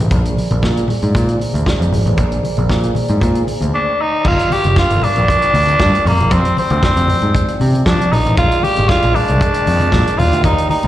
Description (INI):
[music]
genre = disco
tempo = 116 BPM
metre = 4/4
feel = straight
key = unclear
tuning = A4 = 440 Hz
[part]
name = mellow French horn section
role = sustained chords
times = 0.0-10.9 s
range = Eb3 to D5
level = -24 LUFS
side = right 1 dB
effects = none
[part]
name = overdriven picked electric bass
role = bass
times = 0.0-10.9 s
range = E1 to F3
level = -15 LUFS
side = equal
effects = none
[part]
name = warm soul drum kit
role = drums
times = 0.0-10.9 s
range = crash cymbal, hi-hat, kick drum, snare drum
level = -19 LUFS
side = equal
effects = slapback echo
[part]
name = congas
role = percussion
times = 0.4-10.9 s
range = none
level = -23 LUFS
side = left 2 dB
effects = slapback echo
[part]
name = raspy tenor saxophone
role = melody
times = 3.7-10.9 s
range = Bb3 to G4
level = -15 LUFS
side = equal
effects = slapback echo
[sound]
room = small room ambience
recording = live gig heard through the venue's PA, recital hall reverb, lossy compression artefacts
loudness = -12 LUFS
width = side -13 dB against mid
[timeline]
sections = 0.0-4.2 A section; 4.2-10.9 B section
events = none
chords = 0.1 Bb9; 4.2 Gm7; 6.3 Fm69; 8.1 Bb7; 10.2 Ebmaj7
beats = | 0.11 0.63 1.15 1.66 | 2.18 2.70 3.21 3.73 | 4.25 4.76 5.28 5.79 | 6.31 6.83 7.34 7.86 | 8.37 8.89 9.40 9.92 | 10.44